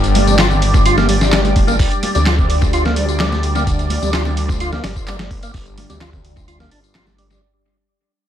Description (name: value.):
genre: breakbeat, breaks.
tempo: 128 BPM.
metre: 4/4.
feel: straight.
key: unclear.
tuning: A4 = 441 Hz.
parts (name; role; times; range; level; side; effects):
phased analog pad; sustained chords; 0.0-7.4 s; G3 to D5; -21 LUFS; left 1 dB; phaser, chorus, sidechain pumping.
phased detuned saw bass; bass; 0.0-7.4 s; G1 to D2; -18 LUFS; equal; phaser, tube saturation.
dusty soul sampler-style drum kit; drums; 0.0-7.4 s; hi-hat, kick drum, snare drum; -18 LUFS; equal; tape echo.
punchy analog drum machine; drums; 0.0-7.4 s; handclaps, hi-hat, tambourine; -25 LUFS; left 1 dB; none.
congas; percussion; 0.2-7.2 s; none; -26 LUFS; right 2 dB; none.
percussive tonewheel organ; riff; 0.3-7.4 s; G3 to F4; -22 LUFS; equal; overdrive, chorus vibrato, slow rotary speaker, tape echo.
room: light reverb.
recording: echo-heavy mix, faint mains hum.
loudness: -13 LUFS.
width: side -10 dB against mid.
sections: 0.0-7.4 A section.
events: drop 0.0-7.4; fade-out 0.0-7.4.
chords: 0.0 Gm7.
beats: 0.39 0.86 1.32 | 1.79 2.26 2.73 3.20 | 3.67 4.14 4.61 5.08 | 5.54 6.01 6.48 6.95.